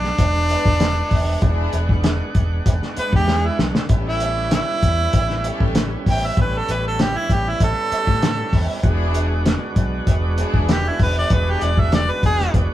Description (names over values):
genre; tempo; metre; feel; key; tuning
straight-eighth soul blues; 97 BPM; 4/4; straight; E mixolydian; A4 = 444 Hz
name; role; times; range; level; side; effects
warm harmonica; melody; 0.0-12.5 s; D4 to G5; -22 LUFS; right 1 dB; overdrive
bright tonewheel organ; accompaniment; 0.0-12.7 s; G3 to F#5; -28 LUFS; right 2 dB; slow rotary speaker
vintage muted fingered electric bass; bass; 0.0-12.7 s; E1 to A2; -22 LUFS; equal; none
cloth-damped thuddy drum kit; drums; 0.0-12.7 s; hi-hat, kick drum, snare drum; -19 LUFS; equal; none
warm symphonic string section; sustained chords; 0.5-11.9 s; G#3 to B4; -30 LUFS; left 1 dB; none
room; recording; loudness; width
moderate studio reverb, RT60 0.6 s; band playing live in one room; -16 LUFS; side -13 dB against mid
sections
0.0-12.7 A section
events
harmonica solo 0.0-12.7; drum fill 3.3-3.9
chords
0.0 E7; 3.9 A7; 8.8 E7